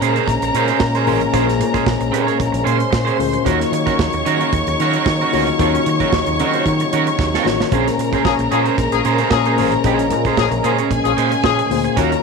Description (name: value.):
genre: disco.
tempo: 113 BPM.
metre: 4/4.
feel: straight.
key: Bb minor.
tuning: A4 = 439 Hz.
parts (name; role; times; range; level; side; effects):
warm studio violin section; second line; 0.0-12.2 s; Ab4 to Db6; -21 LUFS; left 1 dB; none.
electric guitar at the edge of break-up; accompaniment; 0.0-12.2 s; Db4 to Db5; -21 LUFS; right 14 dB; none.
tine electric piano; accompaniment; 0.0-12.2 s; Bb2 to Eb5; -22 LUFS; left 13 dB; overdrive, fast stereo tremolo.
mellow French horn section; sustained chords; 0.0-12.2 s; C3 to Eb4; -24 LUFS; equal; none.
fingered electric bass; bass; 0.0-12.1 s; A1 to Eb3; -22 LUFS; right 1 dB; none.
modern studio drum kit; drums; 0.0-12.2 s; hi-hat, kick drum, snare drum; -23 LUFS; right 5 dB; none.
warm horn section; stabs; 8.3-11.8 s; F3 to Ab4; -21 LUFS; left 13 dB; none.
room: light reverb, small room ambience.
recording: 1960s-style stereo with parts hard left and right.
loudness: -14 LUFS.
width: side -4 dB against mid.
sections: 0.0-12.2 A section.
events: drum fill 7.2-7.7.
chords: 0.0 Bbm9; 3.5 Ebm7; 7.7 Bbm9.